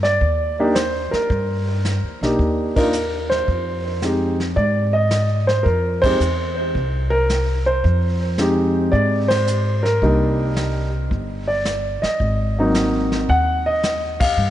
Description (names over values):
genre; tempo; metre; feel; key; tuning
jazz piano trio; 110 BPM; 4/4; swing 69% on 8ths; C minor; A4 = 440 Hz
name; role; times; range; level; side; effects
warm grand piano; melody; 0.0-14.5 s; Gb3 to Gb5; -19 LUFS; equal; diffuse ambient delay
upright bass; bass; 0.0-14.5 s; G1 to Ab2; -21 LUFS; equal; none
vintage brush drum kit; drums; 0.0-14.5 s; brushed snare drum, hi-hat, kick drum, ride cymbal, snare drum; -27 LUFS; equal; none
room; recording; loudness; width
moderate church reverb, RT60 3.0 s; dreamy mix soaked in reverb, nothing above 10.5 kHz; -17 LUFS; side -12 dB against mid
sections
0.0-14.5 A section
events
band accent 2.7, 5.9, 9.2, 14.1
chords
0.0 Cm7 (rootless); 3.5 Fm7; 10.0 Cm7; 12.2 Ab7